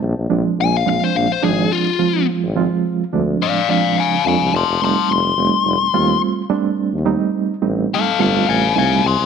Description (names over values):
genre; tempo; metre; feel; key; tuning
straight-eighth soul blues; 106 BPM; 4/4; swing 54% on 16ths; unclear; A4 = 440 Hz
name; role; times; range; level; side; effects
warm tuba; bass; 0.0-9.3 s; F1 to F2; -21 LUFS; left 1 dB; none
reed electric piano; accompaniment; 0.3-9.0 s; F3 to F4; -19 LUFS; right 7 dB; fast tremolo
biting lead guitar; melody; 0.6-9.3 s; F4 to C6; -17 LUFS; left 10 dB; overdrive, slapback echo
room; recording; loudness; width
moderate echo chamber reverb, RT60 1.8 s, small room ambience; 1960s-style stereo with parts hard left and right; -15 LUFS; side -6 dB against mid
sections
0.0-9.3 A section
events
none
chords
0.0 Bb9; 4.5 F9